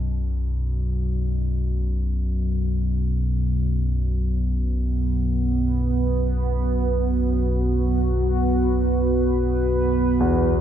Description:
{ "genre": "dark ambient drone", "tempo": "free time", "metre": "none", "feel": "none", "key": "unclear", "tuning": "A4 = 440 Hz", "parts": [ { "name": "warm grand piano", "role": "arpeggios", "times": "0.0-10.6 s", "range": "E2 to B2", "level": "-25 LUFS", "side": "equal", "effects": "none" }, { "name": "deep rumbling drone", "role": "drone", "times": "0.0-10.6 s", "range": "B1 to F#2", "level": "-22 LUFS", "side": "equal", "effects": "built-in reverb" }, { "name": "sweeping resonant pad", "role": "sustained chords", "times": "4.2-10.6 s", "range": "B3 to B4", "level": "-23 LUFS", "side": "right 2 dB", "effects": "chorus" } ], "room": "moderate huge ambient reverb, RT60 7.3 s", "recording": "none", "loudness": "-20 LUFS", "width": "side -10 dB against mid", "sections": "0.0-10.6 A section", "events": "fade-in on grand piano 0.0-10.6", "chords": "0.0 B5", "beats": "free time" }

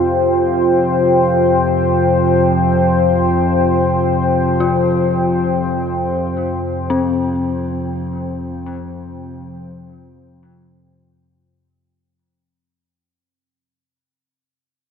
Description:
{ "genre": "dark ambient drone", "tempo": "free time", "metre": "none", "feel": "none", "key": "unclear", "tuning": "A4 = 442 Hz", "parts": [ { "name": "dark analog pad", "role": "sustained chords", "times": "0.0-12.1 s", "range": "F4 to G5", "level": "-16 LUFS", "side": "left 1 dB", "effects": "chorus" }, { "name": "dark detuned synth bell", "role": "arpeggios", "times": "0.0-14.0 s", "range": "C4 to F4", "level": "-24 LUFS", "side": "left 3 dB", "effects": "chorus, tremolo, tape echo" }, { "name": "analog drone", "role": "drone", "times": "0.0-12.2 s", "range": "F2 to C3", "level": "-19 LUFS", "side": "left 1 dB", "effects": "chorus" } ], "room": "wet huge ambient reverb, RT60 7.3 s", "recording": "none", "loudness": "-14 LUFS", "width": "side -7 dB against mid", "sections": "0.0-12.1 A section", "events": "fade-in on synth drone 0.0-12.1; fade-in on synth bell 0.0-12.1; fade-out on analog synth pad 0.0-12.1; fade-out 5.8-12.1", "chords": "0.0 F5", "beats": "free time" }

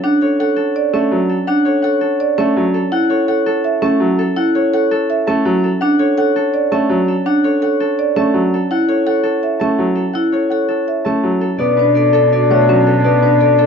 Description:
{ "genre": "classical, minimalist pattern music", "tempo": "166 BPM", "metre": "4/4", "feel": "straight", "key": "unclear", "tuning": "A4 = 440 Hz", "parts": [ { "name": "Celtic harp", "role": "melody", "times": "0.0-13.7 s", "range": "A4 to A5", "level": "-17 LUFS", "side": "left 4 dB", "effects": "none" }, { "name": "marimba with medium mallets", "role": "arpeggios", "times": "0.0-13.7 s", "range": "C#4 to E5", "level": "-16 LUFS", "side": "right 3 dB", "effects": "none" }, { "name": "clear baby grand piano", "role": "accompaniment", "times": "0.9-13.3 s", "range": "F#3 to B3", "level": "-18 LUFS", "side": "right 1 dB", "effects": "none" }, { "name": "clear clarinet", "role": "second line", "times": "11.6-13.7 s", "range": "D4", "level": "-21 LUFS", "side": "equal", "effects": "none" }, { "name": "rich cello", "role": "bass", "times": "11.6-13.7 s", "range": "B2", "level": "-17 LUFS", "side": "right 2 dB", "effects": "none" } ], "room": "light reverb", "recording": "dark, warm production, nothing above 7.7 kHz", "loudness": "-13 LUFS", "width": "side -6 dB against mid", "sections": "0.0-11.6 A section; 11.6-13.7 B section", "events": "none", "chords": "0.0 D; 2.9 F#m; 5.8 D; 8.7 F#m; 11.6 Bm7", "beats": "| 0.03 0.39 0.75 1.11 | 1.48 1.84 2.20 2.56 | 2.92 3.28 3.65 4.01 | 4.37 4.73 5.09 5.45 | 5.81 6.17 6.54 6.90 | 7.26 7.62 7.98 8.34 | 8.71 9.07 9.43 9.79 | 10.15 10.51 10.87 11.23 | 11.60 11.96 12.32 12.68 | 13.04 13.40" }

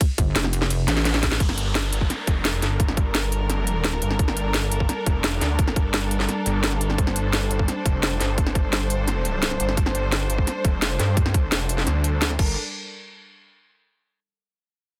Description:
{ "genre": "dark technical drum and bass", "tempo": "172 BPM", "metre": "4/4", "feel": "straight", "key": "G minor", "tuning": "A4 = 440 Hz", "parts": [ { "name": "drum and bass drum kit", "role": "drums", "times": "0.0-12.5 s", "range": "crash cymbal, hi-hat, ride cymbal, snare drum", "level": "-27 LUFS", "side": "equal", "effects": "none" }, { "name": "electronic kick drum", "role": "drums", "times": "0.0-12.5 s", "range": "none", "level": "-24 LUFS", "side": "equal", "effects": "overdrive" }, { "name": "pulsing pluck wobble bass", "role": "bass", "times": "0.2-1.4 s", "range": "F1 to A1", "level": "-25 LUFS", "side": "equal", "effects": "chorus" }, { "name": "zap and downlifter", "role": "sound effects", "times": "0.9-4.2 s", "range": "none", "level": "-36 LUFS", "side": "equal", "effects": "none" }, { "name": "rich studio string section", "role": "sustained chords", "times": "1.4-12.6 s", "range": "G3 to C5", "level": "-31 LUFS", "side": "equal", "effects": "sidechain pumping" }, { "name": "snarling distorted saw bass", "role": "bass", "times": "1.4-12.6 s", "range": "F1 to G2", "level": "-27 LUFS", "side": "equal", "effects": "distortion, overdrive, sidechain pumping" } ], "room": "digital ambience", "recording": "dense, heavily limited modern master", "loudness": "-23 LUFS", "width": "mono", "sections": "0.0-1.4 A section; 1.4-12.6 B section; 12.6-14.0 C section", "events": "drop 0.0-1.4; drum fill 0.9-1.4", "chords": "0.0 Gsus2; 1.4 Gmadd9; 12.6 N.C.", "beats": "| 0.01 0.36 0.70 1.05 | 1.40 1.75 2.10 2.45 | 2.80 3.15 3.50 3.84 | 4.19 4.54 4.89 5.24 | 5.59 5.94 6.29 6.63 | 6.98 7.33 7.68 8.03 | 8.38 8.73 9.08 9.43 | 9.77 10.12 10.47 10.82 | 11.17 11.52 11.87 12.22" }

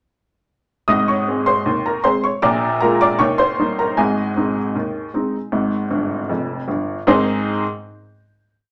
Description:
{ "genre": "ragtime piano", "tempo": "78 BPM", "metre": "2/4", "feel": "straight", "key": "Ab major", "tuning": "A4 = 440 Hz", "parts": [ { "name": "bright upright piano", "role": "solo", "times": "0.9-7.6 s", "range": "F1 to Eb6", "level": "-19 LUFS", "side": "equal", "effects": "none" } ], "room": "wet club reverb, RT60 0.7 s", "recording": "none", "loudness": "-19 LUFS", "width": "mono", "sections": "0.9-7.1 A section; 7.1-8.6 final chord", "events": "upright piano fill 5.9-7.1", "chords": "0.9 Ab; 2.4 Bb7; 3.2 Eb; 4.0 Ab", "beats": "| 0.89 1.66 | 2.43 3.20 | 3.97 4.75 | 5.52 6.29 | 7.07" }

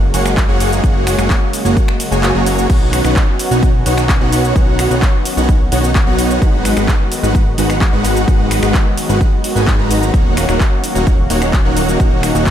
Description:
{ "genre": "EDM, festival progressive house", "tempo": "129 BPM", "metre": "4/4", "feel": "straight", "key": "unclear", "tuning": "A4 = 438 Hz", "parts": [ { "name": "lush unison pad", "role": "sustained chords", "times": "0.0-12.5 s", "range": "C#3 to F#4", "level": "-20 LUFS", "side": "left 1 dB", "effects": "chorus, sidechain pumping" }, { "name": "fat analog bass", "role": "bass", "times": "0.0-12.5 s", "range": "D#1 to B1", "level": "-18 LUFS", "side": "equal", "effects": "sidechain pumping" }, { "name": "supersaw chords", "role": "riff", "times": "0.1-12.5 s", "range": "G#3 to A#5", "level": "-18 LUFS", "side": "right 1 dB", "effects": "wide subtle chorus, sidechain pumping, ping-pong delay" }, { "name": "house drum kit", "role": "drums", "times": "0.1-12.5 s", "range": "crash cymbal, finger snaps, handclaps, hi-hat, ride cymbal, shaker", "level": "-22 LUFS", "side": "equal", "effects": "overdrive" }, { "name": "electronic kick drum", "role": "drums", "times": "0.4-12.5 s", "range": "none", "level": "-14 LUFS", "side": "equal", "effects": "overdrive" } ], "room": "light reverb", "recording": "none", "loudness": "-11 LUFS", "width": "side -10 dB against mid", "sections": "0.0-12.5 A section", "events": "kick drops out 2.2-2.7", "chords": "0.0 F#add9; 2.7 Badd9; 6.4 G#m7; 10.1 D#m7", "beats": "0.37 | 0.84 1.30 1.77 2.23 | 2.70 3.16 3.63 4.09 | 4.56 5.02 5.49 5.95 | 6.42 6.88 7.35 7.81 | 8.28 8.74 9.21 9.67 | 10.14 10.60 11.07 11.53 | 12.00 12.46" }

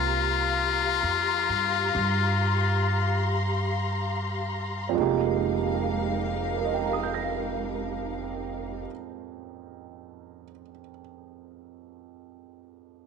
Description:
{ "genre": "jazz ballad", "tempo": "37-46 BPM", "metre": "4/4", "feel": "swing 68% on 8ths", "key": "F minor", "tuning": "A4 = 440 Hz", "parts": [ { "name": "trumpet with metal mute", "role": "melody", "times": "0.0-3.4 s", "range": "F4", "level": "-25 LUFS", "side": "left 12 dB", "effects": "none" }, { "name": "warm concert grand piano", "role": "accompaniment", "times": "0.0-13.1 s", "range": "F2 to Bb6", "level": "-31 LUFS", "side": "right 15 dB", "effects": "none" }, { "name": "dark studio string section", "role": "sustained chords", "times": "0.0-8.8 s", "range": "Ab3 to C6", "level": "-30 LUFS", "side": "left 2 dB", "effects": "none" }, { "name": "upright bass", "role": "bass", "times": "0.0-8.8 s", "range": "F1 to G2", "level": "-30 LUFS", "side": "right 1 dB", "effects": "none" } ], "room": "light reverb, studio reverb", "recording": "1960s-style stereo with parts hard left and right", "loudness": "-24 LUFS", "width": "side -6 dB against mid", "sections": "0.0-5.0 A section; 5.0-11.4 B section", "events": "slowing down 0.0-5.0", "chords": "0.0 C7sus4; 5.0 Fm11", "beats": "0.58 1.95 3.40 | 4.97 6.59 8.20 9.80" }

